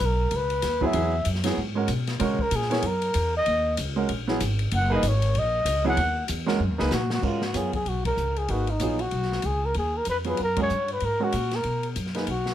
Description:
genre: modal jazz.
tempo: 191 BPM.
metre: 4/4.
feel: swing 61% on 8ths.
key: G# dorian from 7.2 s.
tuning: A4 = 440 Hz.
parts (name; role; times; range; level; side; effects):
breathy trumpet; melody; 0.0-12.5 s; D#4 to F#5; -26 LUFS; left 1 dB; none.
upright bass; bass; 0.0-12.5 s; F#1 to C#3; -27 LUFS; equal; none.
open jazz drum kit; drums; 0.3-12.5 s; crash cymbal, hi-hat, kick drum, ride cymbal, snare drum; -33 LUFS; left 3 dB; none.
warm grand piano; accompaniment; 0.8-12.3 s; F#3 to C#5; -27 LUFS; right 3 dB; none.
room: light reverb.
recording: none.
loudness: -23 LUFS.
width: side -11 dB against mid.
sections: 0.0-7.2 A section; 7.2-12.5 B section.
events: trumpet solo 0.0-7.2; drum fill 6.6-7.2; band accent 8.0, 10.5.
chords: 0.0 C#m9; 2.2 D#m7; 7.2 G#m11.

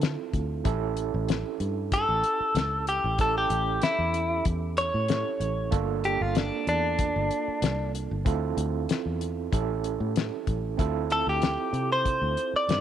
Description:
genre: straight-eighth soul blues.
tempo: 95 BPM.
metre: 4/4.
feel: swing 54% on 16ths.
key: D minor.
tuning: A4 = 440 Hz.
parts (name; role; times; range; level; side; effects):
overdriven tine electric piano; accompaniment; 0.0-12.8 s; Bb3 to A4; -32 LUFS; right 14 dB; medium tremolo.
fingered electric bass; bass; 0.0-12.8 s; G1 to D3; -30 LUFS; equal; none.
cloth-damped thuddy drum kit; drums; 0.0-12.8 s; hi-hat, kick drum, snare drum; -28 LUFS; left 3 dB; none.
direct-recorded clean electric guitar; melody; 1.9-12.8 s; D4 to D5; -26 LUFS; left 1 dB; none.
room: moderate spring reverb, RT60 2.4 s.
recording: 1960s-style stereo.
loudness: -24 LUFS.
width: side -10 dB against mid.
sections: 0.0-10.8 A section; 10.8-12.8 B section.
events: clean electric guitar solo 10.8-12.8.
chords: 0.0 Dm7; 0.7 A7; 5.7 Gm7; 8.3 Dm7; 9.5 A7; 10.8 Dm7.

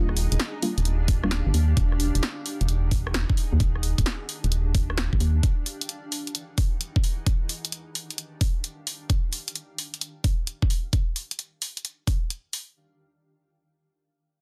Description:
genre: UK garage, two-step garage.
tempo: 131 BPM.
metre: 4/4.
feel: swing 67% on 16ths.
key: unclear.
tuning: A4 = 439 Hz.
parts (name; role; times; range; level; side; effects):
deep mellow chord stab; stabs; 0.0-1.8 s; G3 to E#4; -34 LUFS; equal; chorus, cassette tape, digital delay.
organ-like FM bass; bass; 0.0-5.4 s; D#1 to D#2; -25 LUFS; equal; sidechain pumping.
granular cloud pad; texture; 0.0-9.1 s; D#3 to E#5; -40 LUFS; equal; built-in reverb, sidechain pumping.
punchy analog drum machine; drums; 0.1-12.7 s; hi-hat, rim click, snare drum; -32 LUFS; equal; none.
electronic kick drum; drums; 1.1-12.2 s; none; -26 LUFS; equal; none.
room: little or no reverb.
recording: dense, heavily limited modern master.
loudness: -26 LUFS.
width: mono.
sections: 0.0-12.8 A section; 12.8-14.4 B section.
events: fade-out on ambient pad 0.0-9.1.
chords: 0.0 D#maj9; 1.8 Emaj9; 3.4 D#maj9; 5.4 Emaj9; 7.0 D#maj9; 9.1 N.C..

